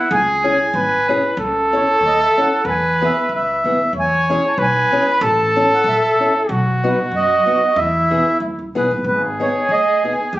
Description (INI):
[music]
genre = alpine folk, alpine dance band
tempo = 94 BPM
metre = 2/4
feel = swing 55% on 8ths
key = E major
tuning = A4 = 441 Hz
[part]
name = mellow accordion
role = melody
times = 0.0-10.4 s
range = B4 to B5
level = -18 LUFS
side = right 1 dB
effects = none
[part]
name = mellow trumpet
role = second line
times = 0.0-10.4 s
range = E4 to C#5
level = -17 LUFS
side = equal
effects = none
[part]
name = upright bass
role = bass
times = 0.1-10.4 s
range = G#1 to F#2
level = -24 LUFS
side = equal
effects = none
[part]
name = fingerpicked acoustic archtop guitar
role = accompaniment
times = 0.4-10.2 s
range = B3 to A4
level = -21 LUFS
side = left 2 dB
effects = none
[sound]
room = moderate studio reverb, RT60 0.5 s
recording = recorded on a phone in the room, club reverb, nothing above 7.9 kHz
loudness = -14 LUFS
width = side -16 dB against mid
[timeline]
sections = 0.0-9.1 A section; 9.1-10.4 B section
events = none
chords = 0.1 C#m; 1.4 A/C#; 2.7 E; 3.9 C#m/E; 5.2 A; 6.5 B; 7.8 E; 9.1 G#m